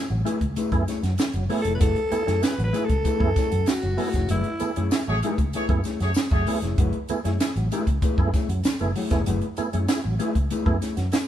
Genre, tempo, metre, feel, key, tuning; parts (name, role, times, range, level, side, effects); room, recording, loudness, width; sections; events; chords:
funk; 97 BPM; 4/4; straight; F# minor; A4 = 440 Hz
percussive tonewheel organ; stabs; 0.0-11.2 s; F#3 to G#4; -30 LUFS; right 4 dB; chorus vibrato, fast rotary speaker
mellow electric guitar; accompaniment; 0.1-11.2 s; A3 to C#5; -29 LUFS; left 4 dB
fretless electric bass; bass; 0.1-11.2 s; E#1 to F#2; -26 LUFS; equal
compact cocktail drum kit; drums; 0.3-11.3 s; hi-hat, kick drum, snare drum; -25 LUFS; equal
tambourine; percussion; 0.3-11.3 s; -43 LUFS; left 3 dB
growling alto saxophone; melody; 1.6-4.9 s; E4 to B4; -27 LUFS; equal
warm horn section; second line; 5.1-6.5 s; A3 to C#5; -30 LUFS; equal
moderate stone room reverb, RT60 1.2 s; band playing live in one room, lossy compression artefacts; -21 LUFS; side -11 dB against mid
0.0-11.3 A section
band accent 4.3-6.8
0.0 F#m11